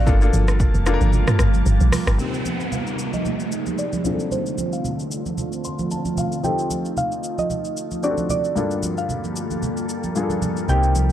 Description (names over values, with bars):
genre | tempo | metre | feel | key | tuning
amapiano | 113 BPM | 4/4 | swing 55% on 16ths | unclear | A4 = 440 Hz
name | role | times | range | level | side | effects
mallet-like synth pluck | melody | 0.0-11.1 s | C5 to G5 | -27 LUFS | right 2 dB | chorus, low-pass filter, digital delay
clear grand piano | accompaniment | 0.0-11.1 s | G2 to C6 | -28 LUFS | left 5 dB | low-pass filter
glassy FM pad | sustained chords | 0.0-11.1 s | C3 to A5 | -28 LUFS | right 1 dB | ensemble chorus, built-in reverb, sidechain pumping, low-pass filter
deep log drum bass | bass | 0.0-2.2 s | F1 to Bb1 | -18 LUFS | equal | none
deep house drum kit | drums | 0.1-11.1 s | hi-hat, kick drum, rim click, shaker, toms | -25 LUFS | equal | none
congas | percussion | 0.1-11.1 s | none | -28 LUFS | right 3 dB | none
downlifter | sound effects | 2.2-6.4 s | none | -31 LUFS | right 3 dB | none
hollow-body short-scale fingered electric bass | bass | 10.7-11.1 s | C2 | -17 LUFS | equal | none
room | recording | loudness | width
little or no reverb | dark, warm production | -19 LUFS | side -11 dB against mid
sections
0.0-2.2 A section; 2.2-11.1 B section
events
drop 0.0-2.2; kick muted 1.1-2.2; filter sweep 2.2-11.1; grand piano fill 5.4-6.4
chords
0.1 Gm9; 2.2 Cm7; 4.0 Dm7; 6.4 F9; 8.0 D7; 8.6 Gm9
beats
| 0.07 0.60 1.13 1.66 | 2.19 2.72 3.25 3.78 | 4.32 4.85 5.38 5.91 | 6.44 6.97 7.50 8.03 | 8.56 9.09 9.62 10.16 | 10.69